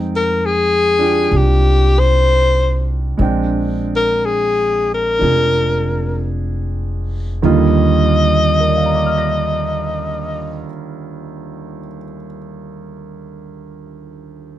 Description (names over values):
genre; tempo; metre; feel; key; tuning
jazz ballad; 51-67 BPM; 4/4; swing 69% on 8ths; Eb major; A4 = 437 Hz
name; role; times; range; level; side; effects
clear concert grand piano; accompaniment; 0.0-14.6 s; Eb2 to Bb6; -21 LUFS; right 5 dB; none
upright bass; bass; 0.0-10.6 s; F1 to F2; -18 LUFS; equal; none
breathy alto saxophone; melody; 0.2-10.6 s; G4 to Eb5; -16 LUFS; left 3 dB; none
room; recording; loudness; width
light reverb; close, detailed microphones; -13 LUFS; side -12 dB against mid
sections
0.0-7.4 A section; 7.4-12.1 B section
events
slowing down 0.0-7.4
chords
0.0 Fm9; 3.2 Bb13; 7.4 Ebmaj7